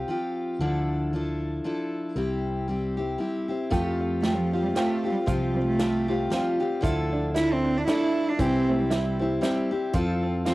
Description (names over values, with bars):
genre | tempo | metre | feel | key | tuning
acoustic folk duo or small band | 116 BPM | 3/4 | swing 57% on 8ths | F major | A4 = 440 Hz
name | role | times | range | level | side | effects
picked steel-string acoustic guitar | accompaniment | 0.0-10.5 s | C3 to A4 | -27 LUFS | left 1 dB | cassette tape
mellow fretless electric bass | bass | 0.0-10.5 s | C2 to F2 | -30 LUFS | equal | none
open-back banjo | arpeggios | 3.7-10.5 s | E3 to G4 | -31 LUFS | right 2 dB | cassette tape
natural country drum kit | drums | 3.7-10.5 s | hi-hat, kick drum, snare drum | -30 LUFS | equal | cassette tape
warm cello | second line | 4.2-10.5 s | F3 to E4 | -27 LUFS | right 2 dB | cassette tape
room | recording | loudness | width
light reverb | home recording on cassette | -23 LUFS | side -19 dB against mid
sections
0.0-3.7 A section; 3.7-10.5 B section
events
cello solo 3.7-10.5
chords
0.0 Csus4; 0.6 Dmadd9; 2.2 C; 3.7 Fadd9; 5.3 Csus4; 6.8 Dmadd9; 8.4 C; 9.9 F